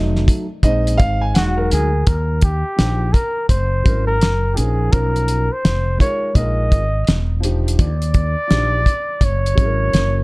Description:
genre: hip hop, jazz-hop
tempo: 84 BPM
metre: 4/4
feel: swing 65% on 16ths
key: unclear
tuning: A4 = 440 Hz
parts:
  - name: dark grand piano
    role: accompaniment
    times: 0.0-10.2 s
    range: F3 to Ab5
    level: -23 LUFS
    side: right 1 dB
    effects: none
  - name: mellow fretless electric bass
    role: bass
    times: 0.0-10.2 s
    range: E1 to Eb2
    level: -18 LUFS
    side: equal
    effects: lush chorus
  - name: cloth-damped thuddy drum kit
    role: drums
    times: 0.2-10.2 s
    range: hi-hat, kick drum, snare drum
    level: -16 LUFS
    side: equal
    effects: none
  - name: trumpet with bucket mute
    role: melody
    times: 1.4-10.2 s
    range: F#4 to Eb5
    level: -22 LUFS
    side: equal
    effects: none
room: small room ambience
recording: dark, warm production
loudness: -15 LUFS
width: side -24 dB against mid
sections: 0.0-2.1 A section; 2.1-10.2 B section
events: grand piano solo 0.0-2.1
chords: 0.0 F7b9; 0.6 Bb7sus4; 1.4 Emaj9; 2.1 Ebmaj9; 3.5 Gb9; 4.2 Gb; 4.9 Bmaj9#11; 5.6 F5; 6.4 Bb7sus4; 7.1 Emmaj7; 7.8 Ebmaj9; 9.2 Gb9

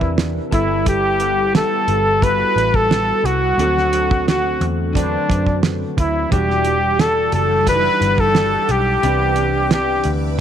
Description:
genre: indie pop, bedroom pop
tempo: 88 BPM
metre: 4/4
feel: straight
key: E minor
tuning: A4 = 440 Hz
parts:
  - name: warm trumpet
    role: melody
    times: 0.0-10.1 s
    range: D4 to B4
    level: -17 LUFS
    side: equal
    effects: analog chorus, tape echo
  - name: electric guitar at the edge of break-up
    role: accompaniment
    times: 0.0-10.4 s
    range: C3 to A4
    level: -26 LUFS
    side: left 10 dB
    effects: lush chorus, warbly pitch drift
  - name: warbly lo-fi synth keys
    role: accompaniment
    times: 0.0-10.4 s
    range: E3 to F#5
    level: -26 LUFS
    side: right 11 dB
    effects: chorus, cassette tape
  - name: vintage muted picked electric bass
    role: bass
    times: 0.0-10.4 s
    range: E1 to F#2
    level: -22 LUFS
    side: equal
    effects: none
  - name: damped 70s drum kit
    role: drums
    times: 0.0-10.2 s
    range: hi-hat, kick drum, snare drum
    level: -19 LUFS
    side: right 2 dB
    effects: none
  - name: shimmering ambient pad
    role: sustained chords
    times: 6.9-10.4 s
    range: G3 to D6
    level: -30 LUFS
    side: left 3 dB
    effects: chorus, built-in reverb, phaser
room: light reverb, studio reverb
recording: 1960s-style stereo with parts hard left and right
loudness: -14 LUFS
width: side -9 dB against mid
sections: 0.0-10.4 A section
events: none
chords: 0.0 Cmaj9; 0.5 G69; 3.6 D7; 6.3 Em9; 9.0 Cmaj9

